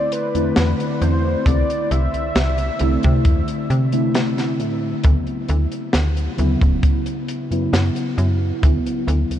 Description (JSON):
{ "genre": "vaporwave", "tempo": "67 BPM", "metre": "4/4", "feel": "straight", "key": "D major", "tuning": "A4 = 441 Hz", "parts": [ { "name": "warm velvety synth lead", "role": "melody", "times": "0.0-3.7 s", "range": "B4 to E5", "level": "-26 LUFS", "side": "equal", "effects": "chorus, tape echo" }, { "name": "mellow FM electric piano", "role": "accompaniment", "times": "0.0-9.4 s", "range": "C#3 to E4", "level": "-22 LUFS", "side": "equal", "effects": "phaser, wide subtle chorus, diffuse ambient delay" }, { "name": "crisp fusion drum kit", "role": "drums", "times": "0.1-9.4 s", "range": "hi-hat, snare drum", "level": "-26 LUFS", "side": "equal", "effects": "vintage 12-bit sampler grit" }, { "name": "slap-like FM bass", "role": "bass", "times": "0.3-9.4 s", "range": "D1 to C3", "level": "-20 LUFS", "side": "equal", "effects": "none" }, { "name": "kick drum", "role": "drums", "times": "1.5-8.8 s", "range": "none", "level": "-16 LUFS", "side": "equal", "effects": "vintage 12-bit sampler grit" } ], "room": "moderate huge ambient reverb, RT60 8.3 s", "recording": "dreamy mix soaked in reverb, cassette tape", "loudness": "-17 LUFS", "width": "side -11 dB against mid", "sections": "0.0-9.4 A section", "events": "none", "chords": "0.0 C69; 5.0 Dmaj13" }